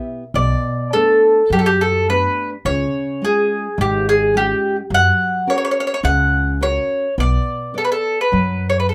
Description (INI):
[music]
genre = fado-style ballad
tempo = 105 BPM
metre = 4/4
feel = rubato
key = B minor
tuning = A4 = 440 Hz
[part]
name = mandolin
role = melody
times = 0.0-8.9 s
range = G4 to F#5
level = -19 LUFS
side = equal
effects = none
[part]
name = nylon-string guitar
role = accompaniment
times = 0.0-8.9 s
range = B2 to D5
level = -26 LUFS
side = equal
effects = none
[part]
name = upright bass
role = bass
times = 0.3-8.9 s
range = G#1 to F#2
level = -23 LUFS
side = equal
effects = none
[sound]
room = little or no reverb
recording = rough home demo mix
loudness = -17 LUFS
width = mono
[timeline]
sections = 0.3-8.9 A section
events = none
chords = 0.3 Bm7; 2.7 C#; 4.9 F#; 7.2 Bm7